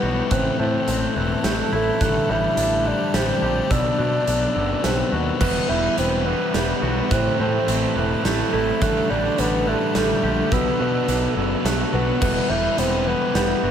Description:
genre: post-rock.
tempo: 106 BPM.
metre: 3/4.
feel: straight.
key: E minor.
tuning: A4 = 440 Hz.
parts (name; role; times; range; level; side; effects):
mellow bassoon; melody; 0.0-13.7 s; A3 to E4; -24 LUFS; equal; tape echo.
icy glass pad; sustained chords; 0.0-13.7 s; E4 to A5; -33 LUFS; right 3 dB; chorus, built-in reverb.
glockenspiel with rubber mallets; arpeggios; 0.0-13.7 s; E6 to G6; -32 LUFS; right 7 dB; tape echo.
twangy electric guitar; arpeggios; 0.0-13.7 s; E2 to G4; -31 LUFS; left 2 dB; tape echo.
thick fuzz guitar; riff; 0.0-13.7 s; A2 to G4; -26 LUFS; left 8 dB; distortion.
fuzz picked electric bass; bass; 0.0-13.7 s; E1 to B2; -26 LUFS; right 1 dB; overdrive.
big rock drum kit; drums; 0.3-13.5 s; crash cymbal, hi-hat, kick drum, snare drum; -27 LUFS; right 1 dB; none.
raw garage guitar; riff; 5.4-13.7 s; E2 to D4; -27 LUFS; right 14 dB; overdrive.
room: moderate large studio reverb, RT60 1.0 s.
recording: none.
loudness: -18 LUFS.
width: side -8 dB against mid.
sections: 0.0-13.7 A section.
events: none.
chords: 0.3 Am; 2.0 Dsus4/A; 3.7 Bm7; 5.4 Emadd9; 7.1 Am; 8.8 Dsus4/A; 10.5 Bm7; 12.2 Emadd9.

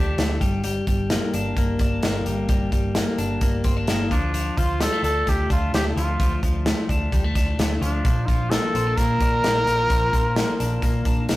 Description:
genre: jangly indie pop.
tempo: 130 BPM.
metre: 4/4.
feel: straight.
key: D minor.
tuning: A4 = 440 Hz.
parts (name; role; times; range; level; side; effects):
clear trumpet; melody; 0.0-0.4, 4.1-11.3 s; D4 to Bb4; -24 LUFS; equal; none.
twelve-string electric guitar; arpeggios; 0.0-11.4 s; F3 to D4; -26 LUFS; left 2 dB; none.
vintage muted fingered electric bass; bass; 0.0-11.4 s; G1 to D2; -26 LUFS; equal; none.
modern studio drum kit; drums; 0.2-11.4 s; hi-hat, kick drum, snare drum; -23 LUFS; equal; none.
room: moderate stone room reverb, RT60 0.9 s.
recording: rough rehearsal-room recording, warm saturation.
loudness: -19 LUFS.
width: side -17 dB against mid.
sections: 0.0-11.4 A section.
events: none.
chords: 0.4 Gm; 4.1 Dm; 8.0 Bb.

